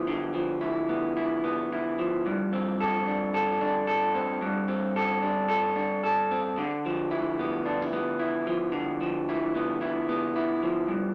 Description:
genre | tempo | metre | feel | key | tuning
indie pop | 111 BPM | 4/4 | swing 55% on 16ths | D dorian | A4 = 440 Hz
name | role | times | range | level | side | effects
electric guitar through a small old amp | solo | 0.0-11.1 s | G2 to A4 | -28 LUFS | equal | warbly pitch drift
room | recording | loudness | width
wet large studio reverb, RT60 0.8 s | none | -28 LUFS | mono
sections
0.0-11.1 A section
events
none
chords
0.0 Dm69; 2.3 Gsus24; 6.6 Dm69

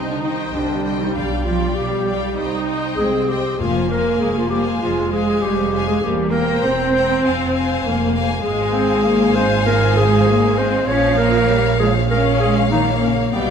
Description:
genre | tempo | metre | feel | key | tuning
quick classical-period movement for symphony orchestra | 98 BPM | 4/4 | rubato | C minor | A4 = 440 Hz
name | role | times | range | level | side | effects
rich chamber violin section | melody | 0.0-13.5 s | F5 to Bb5 | -29 LUFS | left 4 dB | none
mellow clarinet | second line | 0.0-13.5 s | B3 to Db5 | -20 LUFS | equal | none
rich chamber violin section | second line | 0.0-13.5 s | C5 to G5 | -25 LUFS | left 6 dB | none
rich studio viola section | accompaniment | 0.0-13.5 s | F3 to Eb4 | -22 LUFS | left 2 dB | none
rich chamber cello section | bass | 0.0-13.5 s | B2 to Db4 | -24 LUFS | right 4 dB | none
rich chamber double bass section | bass | 0.0-13.5 s | E1 to C2 | -22 LUFS | right 4 dB | none
timpani | percussion | 3.6-4.5 s | F2 | -29 LUFS | left 4 dB | none
room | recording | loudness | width
wet scoring stage reverb, RT60 1.9 s | minimal, uncompressed stereo recording | -15 LUFS | side -7 dB against mid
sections
0.0-13.5 A section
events
none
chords
0.0 Cm; 1.2 G7/B; 2.4 Cm; 3.6 Fm; 6.0 C7/E; 7.2 Fm; 8.4 Fm/Ab; 10.9 Bbm

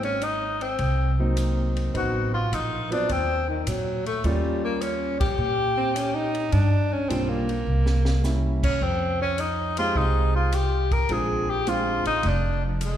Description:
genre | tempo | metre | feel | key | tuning
jazz, small-group swing and bop | 105 BPM | 4/4 | swing 68% on 8ths | Eb mixolydian | A4 = 440 Hz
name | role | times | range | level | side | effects
breathy tenor saxophone | melody | 0.0-13.0 s | Eb3 to Bb4 | -26 LUFS | left 2 dB | none
upright bass | bass | 0.0-13.0 s | F1 to Bb2 | -25 LUFS | equal | none
compact cocktail drum kit | drums | 0.0-13.0 s | crash cymbal, hi-hat, kick drum, ride cymbal, snare drum | -33 LUFS | equal | none
clear grand piano | accompaniment | 1.2-12.0 s | Gb3 to G4 | -30 LUFS | equal | none
clear alto saxophone | second line | 5.8-8.4 s | Bb3 to Eb4 | -27 LUFS | right 2 dB | none
room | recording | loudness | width
wet concert hall reverb, RT60 1.9 s | recorded in a church or concert hall | -22 LUFS | side -10 dB against mid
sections
0.0-13.0 A section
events
band accent 5.1; drum fill 7.7-8.2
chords
0.0 Ab9; 1.9 Adim7; 4.2 Eb9; 6.5 Gm7; 7.7 C7b9; 8.8 Fm7; 11.1 Bb9

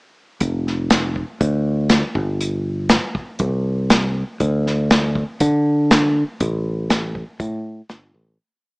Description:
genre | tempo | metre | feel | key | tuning
folk rock and heartland rock | 120 BPM | 4/4 | straight | unclear | A4 = 440 Hz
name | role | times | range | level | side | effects
fingered electric bass | bass | 0.4-8.4 s | F1 to D3 | -19 LUFS | equal | none
unplugged drum kit | drums | 0.4-8.0 s | hi-hat, kick drum, snare drum | -17 LUFS | equal | none
room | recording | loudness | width
light reverb | small speaker sound | -17 LUFS | side -33 dB against mid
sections
0.4-8.4 pre-chorus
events
fade-out 6.4-8.4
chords
none

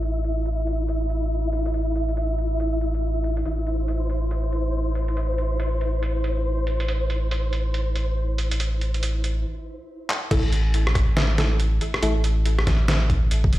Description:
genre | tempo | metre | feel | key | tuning
deep dubstep | 140 BPM | 4/4 | swing 61% on 16ths, half-time | A minor | A4 = 436 Hz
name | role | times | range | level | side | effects
saturated sub bass | bass | 0.0-13.6 s | E1 to A1 | -23 LUFS | equal | none
trip hop sampler-style drum kit | drums | 0.0-13.6 s | crash cymbal, handclaps, hi-hat, rim click, snare drum | -28 LUFS | equal | studio reverb
flickering grainy texture | texture | 0.0-9.5 s | E4 to E5 | -29 LUFS | equal | built-in reverb
filtered dub chord stab | stabs | 10.3-12.1 s | A3 to A4 | -30 LUFS | left 1 dB | chorus, dub echo
electronic kick drum | drums | 10.3-13.5 s | none | -22 LUFS | equal | studio reverb
room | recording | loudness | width
light reverb, digital ambience | played on a big sound system in a bare room, large studio reverb, low-pass filter | -21 LUFS | side -15 dB against mid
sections
0.0-10.3 A section; 10.3-13.6 B section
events
filter sweep 0.0-10.3; stop 9.5-10.3; drum fill 10.1; drop 10.3-13.6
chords
0.0 A5

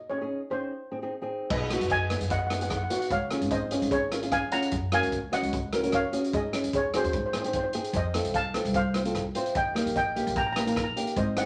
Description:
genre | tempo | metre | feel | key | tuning
calypso | 149 BPM | 4/4 | swing 54% on 16ths | unclear | A4 = 440 Hz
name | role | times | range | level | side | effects
steel pan | melody | 0.0-11.5 s | Ab4 to Bb5 | -32 LUFS | equal | none
flamenco guitar | accompaniment | 0.1-11.5 s | Bb3 to Db5 | -33 LUFS | equal | none
upright bass | bass | 1.5-11.4 s | Ab1 to Ab2 | -36 LUFS | equal | none
crunchy breakbeat drum kit | drums | 1.5-11.5 s | crash cymbal, hi-hat, kick drum, rim click | -36 LUFS | equal | none
room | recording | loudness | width
wet studio reverb, RT60 0.6 s | none | -28 LUFS | mono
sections
0.0-1.5 A section; 1.5-11.5 B section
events
break 0.0-1.5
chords
0.0 Absus4; 0.7 Ab; 1.5 Cb; 3.1 Dbmaj7; 4.7 Gb6; 6.3 Ab7sus4; 7.1 Ab; 7.9 F7; 9.6 Eb

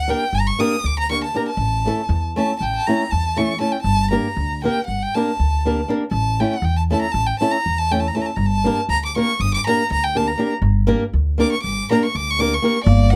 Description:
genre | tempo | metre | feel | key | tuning
balkan folk, Balkan wedding band | 239 BPM (eighths) | 9/8 | straight | unclear | A4 = 440 Hz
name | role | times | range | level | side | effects
warm violin | melody | 0.0-13.2 s | D5 to Eb6 | -24 LUFS | equal | none
upright bass | bass | 0.0-13.2 s | G1 to E2 | -22 LUFS | equal | none
flamenco guitar | accompaniment | 0.1-13.2 s | A3 to Bb4 | -22 LUFS | equal | none
mellow clarinet | second line | 12.9-13.2 s | Bb3 | -22 LUFS | equal | none
room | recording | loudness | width
light reverb | close, detailed microphones | -20 LUFS | mono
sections
0.0-12.9 A section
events
violin solo 0.0-12.9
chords
0.0 Gm; 1.6 A; 3.9 Gm; 6.1 A; 8.4 Gm

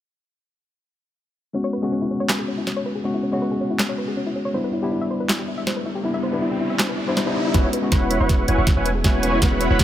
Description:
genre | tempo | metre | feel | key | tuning
future bass | 160 BPM | 4/4 | half-time | unclear | A4 = 440 Hz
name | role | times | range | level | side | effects
tine electric piano | accompaniment | 1.5-9.8 s | G3 to F#4 | -24 LUFS | left 2 dB | overdrive, sidechain pumping, low-pass filter, dub echo
soft round pluck | arpeggios | 1.5-9.8 s | C#4 to E5 | -29 LUFS | left 2 dB | chorus, sidechain pumping, dub echo
trap drum kit | drums | 2.3-9.8 s | handclaps, hi-hat, snare drum | -25 LUFS | right 1 dB | none
riser | sound effects | 5.6-9.8 s | none | -30 LUFS | equal | none
dense compressed supersaw | riff | 7.5-9.8 s | E4 to C#6 | -22 LUFS | right 2 dB | cassette tape, sidechain pumping, low-pass filter
warm 808-style bass | bass | 7.5-9.8 s | E1 | -23 LUFS | right 1 dB | tube saturation, sidechain pumping
electronic kick drum | drums | 7.5-9.8 s | none | -19 LUFS | right 1 dB | overdrive
room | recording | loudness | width
light reverb, digital ambience | none | -19 LUFS | side -12 dB against mid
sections
1.5-7.5 A section; 7.5-9.8 B section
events
filter sweep on tine electric piano 1.5-7.5; filter sweep on synth arpeggio sound 1.5-7.5; riser 5.6-7.5; build-up 7.5-9.8; drum fill 7.5-9.8; filter sweep on supersaw synth 7.5-9.8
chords
1.5 E6 (rootless); 4.5 Cmaj7; 7.5 E6

